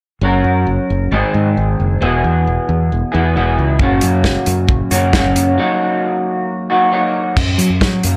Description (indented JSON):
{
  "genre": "indie rock",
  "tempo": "134 BPM",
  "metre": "4/4",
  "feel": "straight",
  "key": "F# mixolydian",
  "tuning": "A4 = 437 Hz",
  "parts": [
    { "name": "electric guitar through a small old amp", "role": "riff", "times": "0.2-8.2 s", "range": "E2 to A#4", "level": "-18 LUFS", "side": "equal", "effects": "lush chorus" },
    { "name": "modern bright fingered electric bass", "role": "bass", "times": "0.2-8.1 s", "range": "E1 to F#3", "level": "-18 LUFS", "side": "equal", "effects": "none" },
    { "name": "loose indie drum kit", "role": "drums", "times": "3.8-8.1 s", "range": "crash cymbal, hi-hat, kick drum, snare drum", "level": "-19 LUFS", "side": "equal", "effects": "none" }
  ],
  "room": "light reverb",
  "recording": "none",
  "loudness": "-15 LUFS",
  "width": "mono",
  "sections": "0.2-7.4 A section",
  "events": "break 5.6-7.4",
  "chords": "0.2 F#; 1.1 G#; 2.0 E; 3.8 F#; 5.6 D#m/F#; 7.4 F#",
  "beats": "| 0.22 0.67 1.12 1.56 | 2.01 2.46 2.91 3.35 | 3.80 4.25 4.70 5.14 | 5.59 6.04 6.48 6.93 | 7.37 7.82"
}